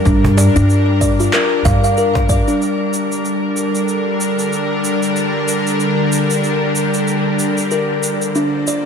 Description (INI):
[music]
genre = organic downtempo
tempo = 94 BPM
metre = 4/4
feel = swing 58% on 16ths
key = unclear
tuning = A4 = 439 Hz
[part]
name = bowed-like drone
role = sustained chords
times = 0.0-8.9 s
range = D3 to D5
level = -17 LUFS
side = equal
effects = built-in reverb, sidechain pumping, shimmer reverb
[part]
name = kalimba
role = arpeggios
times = 0.0-2.6, 7.7-8.9 s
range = D4 to F5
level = -19 LUFS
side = left 1 dB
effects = ping-pong delay, shimmer reverb
[part]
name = upright bass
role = bass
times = 0.1-2.4 s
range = G2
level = -15 LUFS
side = equal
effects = sidechain pumping
[part]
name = electronic cabasa and handclaps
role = drums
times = 0.1-8.8 s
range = none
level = -23 LUFS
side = right 1 dB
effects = none
[part]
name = electronic kick drum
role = drums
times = 0.1-2.4 s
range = none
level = -17 LUFS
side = equal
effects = none
[part]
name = cajon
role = percussion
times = 0.2-2.3 s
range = none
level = -20 LUFS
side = right 1 dB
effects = none
[sound]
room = moderate echo chamber reverb, RT60 2.5 s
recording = none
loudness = -14 LUFS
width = side -6 dB against mid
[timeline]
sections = 0.0-2.6 A section; 2.6-8.9 B section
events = none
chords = 0.0 Gm7; 2.6 Gmadd9/D; 7.7 Bb/D